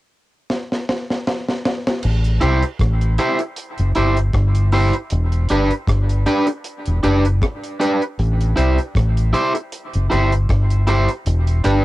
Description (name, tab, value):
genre	dub reggae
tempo	78 BPM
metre	4/4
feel	swing 56% on 16ths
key	A dorian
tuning	A4 = 439 Hz
part	deep reggae drum kit	drums	0.5-11.8 s	crash cymbal, hi-hat, kick drum, rim click, snare drum	-23 LUFS	equal	cassette tape
part	deep dub fingered electric bass	bass	2.0-11.8 s	E1 to C2	-16 LUFS	equal	none
part	electric guitar at the edge of break-up	accompaniment	2.4-11.8 s	D4 to C5	-20 LUFS	right 1 dB	cassette tape, dub echo
room	light reverb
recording	home recording on cassette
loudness	-16 LUFS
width	side -17 dB against mid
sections	0.0-2.0 A section; 2.0-11.8 B section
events	drum fill 0.5-2.0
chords	0.0 N.C.; 2.0 Am7; 5.1 Em7; 8.2 Am7; 11.3 Em7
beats	0.49 1.26 | 2.03 2.80 3.56 4.33 | 5.10 5.87 6.64 7.41 | 8.18 8.95 9.72 10.49 | 11.26